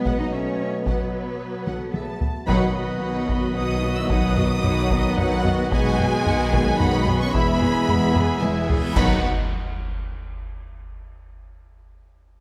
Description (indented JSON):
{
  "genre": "cinematic, epic orchestral film score",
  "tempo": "111 BPM",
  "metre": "3/4",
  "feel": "straight",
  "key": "B mixolydian",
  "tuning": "A4 = 440 Hz",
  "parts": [
    { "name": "warm symphonic violin section", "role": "second line", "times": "0.0-9.3 s", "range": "F#4 to G#5", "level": "-35 LUFS", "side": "equal", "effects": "none" },
    { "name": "warm symphonic viola section", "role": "accompaniment", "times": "0.0-9.3 s", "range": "F#3 to G#4", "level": "-32 LUFS", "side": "equal", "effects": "none" },
    { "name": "mellow French horn section", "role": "sustained chords", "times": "0.0-9.2 s", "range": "F#3 to D#5", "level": "-32 LUFS", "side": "equal", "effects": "none" },
    { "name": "mellow trombone section", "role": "sustained chords", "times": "0.0-9.2 s", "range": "B2 to G#3", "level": "-30 LUFS", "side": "equal", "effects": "none" },
    { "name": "warm symphonic cello section", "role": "bass", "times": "0.0-9.3 s", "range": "E2 to D#4", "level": "-31 LUFS", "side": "equal", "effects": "none" },
    { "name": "warm symphonic violin section", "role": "melody", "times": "0.1-9.3 s", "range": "E5 to E6", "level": "-32 LUFS", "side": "equal", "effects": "none" },
    { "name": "warm studio double bass section", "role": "bass", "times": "0.1-9.3 s", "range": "E1 to B1", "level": "-30 LUFS", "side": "equal", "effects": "none" },
    { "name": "solo taiko drums", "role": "drums", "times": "0.1-10.0 s", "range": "none", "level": "-28 LUFS", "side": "equal", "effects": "none" },
    { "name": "pipe organ, cornet", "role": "sustained chords", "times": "2.5-9.3 s", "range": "B3 to F#5", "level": "-33 LUFS", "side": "equal", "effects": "none" },
    { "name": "cymbal swell, clash cymbals and concert bass drum", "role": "percussion", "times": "5.7-10.0 s", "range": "none", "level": "-32 LUFS", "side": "equal", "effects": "none" },
    { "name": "reverse cymbal and impact", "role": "sound effects", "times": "8.7-10.6 s", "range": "none", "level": "-39 LUFS", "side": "equal", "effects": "none" }
  ],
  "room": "moderate scoring stage reverb, RT60 1.7 s",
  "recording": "none",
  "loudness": "-22 LUFS",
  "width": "mono",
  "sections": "0.0-2.5 A section; 2.5-9.0 B section; 9.0-10.6 C section",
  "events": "drum fill 1.7-2.5, 8.2-9.0; band accent 2.5-3.0, 9.0-9.5; reverse cymbal 8.7; impact 9.0-10.6",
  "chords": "0.0 G#m7/B; 0.9 B; 5.7 G#m7/B; 7.3 E; 9.0 B"
}